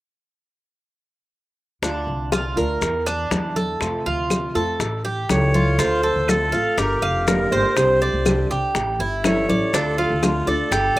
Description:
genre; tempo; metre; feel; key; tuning
latin, Cuban son and guajira; 122 BPM; 4/4; straight; D minor; A4 = 439 Hz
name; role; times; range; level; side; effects
nylon-string guitar; accompaniment; 1.8-10.8 s; C3 to G4; -28 LUFS; left 1 dB; none
Cuban tres; arpeggios; 1.8-11.0 s; D4 to F5; -23 LUFS; right 2 dB; none
upright bass; bass; 1.8-11.0 s; E1 to F2; -25 LUFS; equal; none
bongos; percussion; 1.8-11.0 s; none; -27 LUFS; left 5 dB; none
congas; percussion; 1.8-11.0 s; none; -26 LUFS; left 1 dB; none
maracas; percussion; 1.8-11.0 s; none; -31 LUFS; left 3 dB; none
claves; percussion; 2.3-11.0 s; none; -33 LUFS; right 4 dB; none
clear clarinet; melody; 5.3-11.0 s; F4 to C#5; -24 LUFS; equal; slapback echo
buzzing kalimba; second line; 5.3-11.0 s; D4 to A4; -26 LUFS; right 2 dB; slapback echo
room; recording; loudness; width
little or no reverb; recorded outdoors, with no room sound; -18 LUFS; side -17 dB against mid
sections
1.8-5.8 A section; 5.8-11.0 B section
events
none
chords
1.8 Dm; 2.8 Em7b5; 3.8 F; 4.8 A7; 5.8 Dm7; 6.8 Gm7; 7.8 Csus2; 8.8 A7; 9.7 Dm

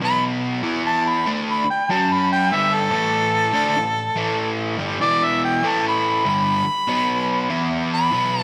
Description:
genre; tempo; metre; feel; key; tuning
rock; 96 BPM; 4/4; swing 63% on 8ths; unclear; A4 = 442 Hz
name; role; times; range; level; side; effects
clear harmonica; melody; 0.0-8.4 s; A4 to B5; -22 LUFS; equal; overdrive
crunchy overdriven guitar; riff; 0.0-8.4 s; E2 to F#4; -24 LUFS; equal; slapback echo
room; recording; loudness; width
moderate lush hall reverb, RT60 2.0 s, studio ambience; big arena sound; -20 LUFS; mono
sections
0.0-8.4 A section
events
harmonica solo 0.0-8.4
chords
0.0 B5; 0.6 E5; 1.3 Bm7; 1.9 F#5; 2.5 A5; 5.0 E5; 5.6 A5; 6.3 N.C.; 6.9 B5; 7.5 E5

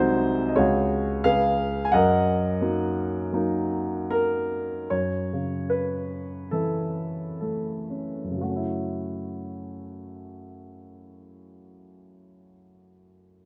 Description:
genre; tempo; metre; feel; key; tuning
classical, lyrical solo piano; 56-90 BPM; 4/4; rubato; F# major, F# minor from 4.9 s; A4 = 439 Hz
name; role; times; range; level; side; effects
warm grand piano; solo; 0.0-13.5 s; B#1 to G#5; -26 LUFS; equal; none
room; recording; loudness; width
moderate scoring stage reverb, RT60 1.9 s; close, detailed microphones; -26 LUFS; mono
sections
0.0-4.9 A section; 4.9-8.4 B section; 8.4-12.4 C section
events
slowing down 1.9-8.4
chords
0.0 G#7/B#; 0.6 C#sus4; 1.2 C#7; 1.9 F#6; 4.9 F#m7

